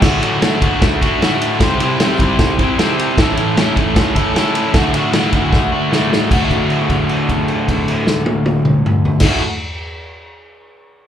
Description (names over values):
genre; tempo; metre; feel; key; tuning
garage rock duo or trio; 152 BPM; 4/4; straight; D mixolydian; A4 = 440 Hz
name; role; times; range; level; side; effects
crunchy overdriven guitar; riff; 0.0-9.4 s; D2 to C5; -15 LUFS; equal; slapback echo
vintage drum kit; drums; 0.0-9.3 s; crash cymbal, kick drum, ride cymbal, snare drum, toms; -16 LUFS; equal; none
room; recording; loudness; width
light reverb; live gig heard through the venue's PA, club reverb; -13 LUFS; side -9 dB against mid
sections
0.0-6.3 A section; 6.3-9.5 B section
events
drum fill 5.5-6.3; held note 6.3-9.2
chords
0.0 D; 1.6 C; 3.2 A; 4.7 D